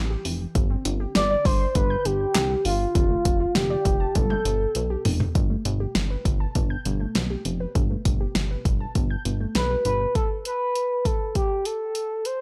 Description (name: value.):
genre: synth-pop.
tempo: 100 BPM.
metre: 4/4.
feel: straight.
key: unclear.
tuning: A4 = 439 Hz.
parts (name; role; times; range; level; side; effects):
expressive synth lead; melody; 0.0-5.1, 9.6-12.4 s; F4 to D5; -27 LUFS; equal; chorus, analog delay.
warbly dusty pluck; arpeggios; 0.0-10.1 s; B2 to G6; -35 LUFS; equal; chorus, analog delay.
chorused synth bass; bass; 0.0-10.1 s; F1 to C2; -29 LUFS; equal; none.
deep house drum kit; drums; 0.3-12.4 s; handclaps, hi-hat, kick drum, snare drum, toms; -27 LUFS; equal; none.
room: light reverb.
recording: dry, gritty hardware recording.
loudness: -24 LUFS.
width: mono.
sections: 0.0-5.4 A section; 5.4-10.2 B section; 10.2-12.4 C section.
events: drum fill 4.2-5.4.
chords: 0.0 Em; 0.6 Gsus4; 3.0 Dm/F; 4.2 Gadd9; 10.2 N.C..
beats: | 0.55 1.15 1.75 2.35 | 2.95 3.55 4.15 4.75 | 5.35 5.95 6.55 7.15 | 7.75 8.35 8.95 9.55 | 10.15 10.75 11.35 11.95.